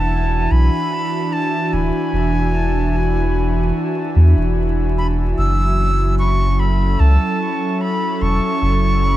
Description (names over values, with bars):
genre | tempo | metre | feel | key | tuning
ambient dub | 74 BPM | 4/4 | straight | E mixolydian | A4 = 441 Hz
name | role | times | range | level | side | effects
breathy bright concert flute | melody | 0.0-9.2 s | G#5 to E6 | -22 LUFS | right 1 dB | dub echo
airy breathy pad | sustained chords | 0.0-9.2 s | E3 to E5 | -20 LUFS | equal | chorus
soft dub sub bass | bass | 0.0-9.2 s | D1 to E2 | -16 LUFS | equal | tube saturation
room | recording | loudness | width
light reverb, studio ambience | echo-heavy mix, vinyl crackle | -15 LUFS | side -14 dB against mid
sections
0.0-9.2 A section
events
none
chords
0.0 E7; 5.4 F#m7